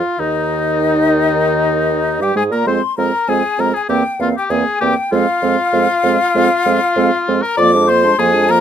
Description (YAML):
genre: quick classical-period movement for wind quintet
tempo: 98 BPM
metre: 4/4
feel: rubato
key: Eb major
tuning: A4 = 440 Hz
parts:
  - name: mellow hollow silver concert flute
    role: melody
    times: 0.0-8.6 s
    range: Eb5 to D6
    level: -18 LUFS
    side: left 5 dB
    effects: none
  - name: warm oboe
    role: second line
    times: 0.0-8.6 s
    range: Eb4 to D5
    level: -18 LUFS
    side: left 4 dB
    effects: none
  - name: mellow French horn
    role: accompaniment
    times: 0.0-8.6 s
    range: Eb3 to Bb3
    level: -22 LUFS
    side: equal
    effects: none
  - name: mellow clarinet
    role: accompaniment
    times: 0.0-8.6 s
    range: Bb3 to Bb4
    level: -22 LUFS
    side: right 10 dB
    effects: none
  - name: mellow bassoon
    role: bass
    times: 0.0-8.6 s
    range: Eb2 to Bb2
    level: -18 LUFS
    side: right 3 dB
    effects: none
room: light reverb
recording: close, detailed microphones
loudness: -13 LUFS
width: side -9 dB against mid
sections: 0.0-8.6 A section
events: none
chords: 0.2 Eb; 2.7 Fm; 3.9 C7/E; 5.1 Fm; 7.6 Bb7/F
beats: | 0.19 0.81 1.44 2.06 | 2.68 3.30 3.91 4.52 | 5.13 5.74 6.35 6.97 | 7.58 8.18